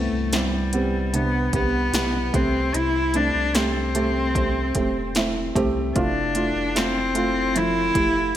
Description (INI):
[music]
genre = pop ballad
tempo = 75 BPM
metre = 4/4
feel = straight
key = unclear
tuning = A4 = 443 Hz
[part]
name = warm cello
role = melody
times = 0.0-8.4 s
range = G3 to E4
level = -23 LUFS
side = left 1 dB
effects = none
[part]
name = felt-muted upright piano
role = accompaniment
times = 0.0-8.4 s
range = G2 to G4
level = -25 LUFS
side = right 2 dB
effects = none
[part]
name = warm sub bass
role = bass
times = 0.0-8.3 s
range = E1 to C2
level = -28 LUFS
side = equal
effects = none
[part]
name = deep house drum kit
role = drums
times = 0.3-8.1 s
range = hi-hat, kick drum, snare drum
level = -26 LUFS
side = equal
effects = gated reverb
[sound]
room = moderate lush hall reverb, RT60 2.9 s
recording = bright 1980s-style digital production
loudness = -20 LUFS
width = side -11 dB against mid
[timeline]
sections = 0.0-8.4 A section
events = none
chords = 0.0 Cmaj7; 2.3 Am7/C; 6.0 Fmaj7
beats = 0.32 1.13 1.94 | 2.74 3.55 4.36 5.16 | 5.96 6.76 7.55 8.35